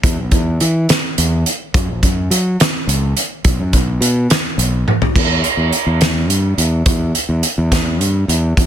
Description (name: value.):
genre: math rock and midwest emo.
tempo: 70 BPM (dotted quarters).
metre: 6/8.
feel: straight.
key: unclear.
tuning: A4 = 437 Hz.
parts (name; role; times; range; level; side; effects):
growling fingered electric bass; bass; 0.0-8.7 s; A#1 to F#3; -16 LUFS; equal; overdrive.
loose indie drum kit; drums; 0.0-8.7 s; crash cymbal, hi-hat, kick drum, snare drum, toms; -15 LUFS; right 1 dB; none.
room: little or no reverb.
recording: dense, heavily limited modern master, faint mains hum.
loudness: -13 LUFS.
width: side -10 dB against mid.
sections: 0.0-5.2 A section; 5.2-8.7 B section.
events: drum fill 4.9.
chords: none.